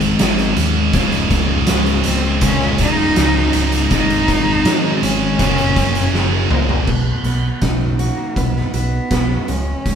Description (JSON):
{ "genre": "quiet-loud alternative rock", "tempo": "81 BPM", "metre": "4/4", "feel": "straight", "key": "Db major", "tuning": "A4 = 440 Hz", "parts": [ { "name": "warm cello", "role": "melody", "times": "0.0-9.9 s", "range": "Ab3 to Eb4", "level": "-21 LUFS", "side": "equal", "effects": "none" }, { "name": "high-gain distorted guitar", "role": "riff", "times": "0.0-6.9 s", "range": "Db2 to Ab3", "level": "-20 LUFS", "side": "right 8 dB", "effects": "distortion" }, { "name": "thick fuzz guitar", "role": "riff", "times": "0.0-6.9 s", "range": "Db2 to Ab4", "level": "-20 LUFS", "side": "left 6 dB", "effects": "distortion" }, { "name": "overdriven picked electric bass", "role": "bass", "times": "0.0-9.9 s", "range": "Db1 to Ab2", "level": "-20 LUFS", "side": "equal", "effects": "none" }, { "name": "oversized low-tuned drum kit", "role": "drums", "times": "0.0-9.9 s", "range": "crash cymbal, hi-hat, kick drum, snare drum, toms", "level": "-19 LUFS", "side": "right 1 dB", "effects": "none" }, { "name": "fingerpicked steel-string acoustic guitar", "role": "arpeggios", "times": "6.9-9.9 s", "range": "Db2 to Cb5", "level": "-26 LUFS", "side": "right 2 dB", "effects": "none" } ], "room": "light reverb", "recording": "band playing live in one room", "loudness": "-14 LUFS", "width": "side -7 dB against mid", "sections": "0.0-6.9 A section; 6.9-9.9 B section", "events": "drum fill 6.1-6.9", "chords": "0.0 Ab; 0.9 Db; 3.9 Ab; 5.4 Gb; 6.9 Cb", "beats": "0.20 | 0.94 1.69 2.43 3.17 | 3.92 4.66 5.40 6.15 | 6.89 7.63 8.38 9.12 | 9.87" }